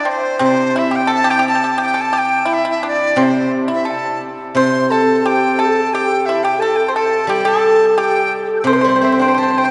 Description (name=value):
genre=chinese traditional, Chinese chamber ensemble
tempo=87 BPM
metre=2/4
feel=rubato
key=C gong mode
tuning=A4 = 441 Hz
part: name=bright dizi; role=melody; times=0.0-9.7 s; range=C5 to G6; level=-20 LUFS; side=equal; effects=none
part: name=pipa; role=second line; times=0.0-9.7 s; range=C4 to C5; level=-22 LUFS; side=equal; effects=none
part: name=steel-string zither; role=accompaniment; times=0.4-9.7 s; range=C3 to G4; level=-22 LUFS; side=equal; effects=none
part: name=breathy low xiao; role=second line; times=4.6-9.7 s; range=G4 to C5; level=-19 LUFS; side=equal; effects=none
room=wet cathedral reverb, RT60 5.2 s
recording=recorded in a church or concert hall, nothing above 10.7 kHz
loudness=-15 LUFS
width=mono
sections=0.0-9.7 A section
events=none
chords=none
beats=| 0.41 1.10 | 1.78 2.46 | 3.15 3.84 | 4.54 5.24 | 5.92 6.60 | 7.28 7.96 | 8.65 9.35